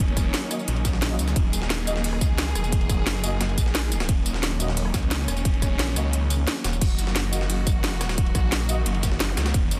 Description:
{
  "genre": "dark technical drum and bass",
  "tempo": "176 BPM",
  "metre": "4/4",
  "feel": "straight",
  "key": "Eb phrygian",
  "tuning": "A4 = 442 Hz",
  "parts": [
    { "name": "clear studio string section", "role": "sustained chords", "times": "0.0-9.8 s", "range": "Eb3 to Ab4", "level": "-33 LUFS", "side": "equal", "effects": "sidechain pumping" },
    { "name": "phased detuned saw bass", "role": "bass", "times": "0.0-9.8 s", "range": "Eb1 to Db2", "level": "-28 LUFS", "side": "equal", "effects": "phaser, tube saturation, sidechain pumping" },
    { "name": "breakbeat sampler-style drum kit", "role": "drums", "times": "0.0-9.8 s", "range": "hi-hat, ride cymbal, snare drum", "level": "-37 LUFS", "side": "equal", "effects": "high-pass filter on cymbals, high-pass filter on snare, high-pass filter on hats" },
    { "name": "drum and bass drum kit", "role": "drums", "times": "0.0-9.8 s", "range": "crash cymbal, hi-hat, rim click, snare drum, tambourine", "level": "-30 LUFS", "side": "equal", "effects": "none" },
    { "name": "electronic kick drum", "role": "drums", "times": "0.0-9.6 s", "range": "none", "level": "-26 LUFS", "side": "equal", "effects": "none" },
    { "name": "mellow brass ensemble", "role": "stabs", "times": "0.5-8.8 s", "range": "Bb3 to Eb5", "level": "-37 LUFS", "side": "equal", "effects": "digital delay" },
    { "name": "zap", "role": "sound effects", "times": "9.3-9.4 s", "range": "none", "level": "-40 LUFS", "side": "equal", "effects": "none" }
  ],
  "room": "light reverb, digital ambience",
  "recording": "dense, heavily limited modern master",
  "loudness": "-24 LUFS",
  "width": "mono",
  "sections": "0.0-6.8 A section; 6.8-9.8 A section",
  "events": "drop 0.0-6.8, 6.8-9.8; kick drops out 6.1-6.8",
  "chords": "0.0 Ebm"
}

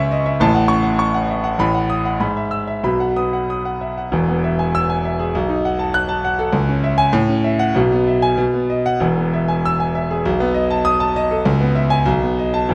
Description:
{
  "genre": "classical, virtuoso piano study",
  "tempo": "92-103 BPM",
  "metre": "2/4",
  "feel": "rubato",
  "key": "E major",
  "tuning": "A4 = 443 Hz",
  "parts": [
    { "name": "clear grand piano", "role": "solo", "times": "0.0-12.7 s", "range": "E1 to F#6", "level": "-18 LUFS", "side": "equal", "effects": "none" }
  ],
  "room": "moderate recital hall reverb, RT60 1.4 s",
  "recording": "close, detailed microphones",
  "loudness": "-18 LUFS",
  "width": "mono",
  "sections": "0.0-4.1 A section; 4.1-12.7 B section",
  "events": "none",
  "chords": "0.4 F#m/A; 1.6 B7/A; 2.2 E/G#; 2.8 B; 4.1 E; 5.3 B7; 6.5 C#m; 7.1 F#m7/A; 7.8 E/B; 8.4 B; 9.0 E; 10.3 B7; 11.5 C#m7; 12.1 B7"
}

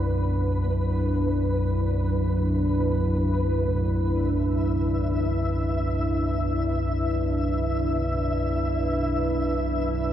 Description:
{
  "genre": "dark ambient drone",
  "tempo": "free time",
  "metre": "none",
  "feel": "none",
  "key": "B minor",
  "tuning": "A4 = 439 Hz",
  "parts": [
    { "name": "deep dark ambient pad", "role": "sustained chords", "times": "0.0-10.1 s", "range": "D4 to B4", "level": "-27 LUFS", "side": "right 1 dB", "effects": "chorus, built-in reverb" },
    { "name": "carillon bells", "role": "arpeggios", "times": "0.0-9.5 s", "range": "A2 to F#4", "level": "-43 LUFS", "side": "left 1 dB", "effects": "none" },
    { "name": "deep rumbling drone", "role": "drone", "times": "0.0-10.1 s", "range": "B1 to F#2", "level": "-25 LUFS", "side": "equal", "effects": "built-in reverb" },
    { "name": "flickering grainy texture", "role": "texture", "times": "0.0-10.1 s", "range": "B4 to E5", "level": "-32 LUFS", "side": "left 1 dB", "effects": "built-in reverb" }
  ],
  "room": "moderate huge ambient reverb, RT60 7.9 s",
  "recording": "dark, warm production",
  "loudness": "-22 LUFS",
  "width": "side -10 dB against mid",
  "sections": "0.0-10.1 A section",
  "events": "none",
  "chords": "0.0 Bm"
}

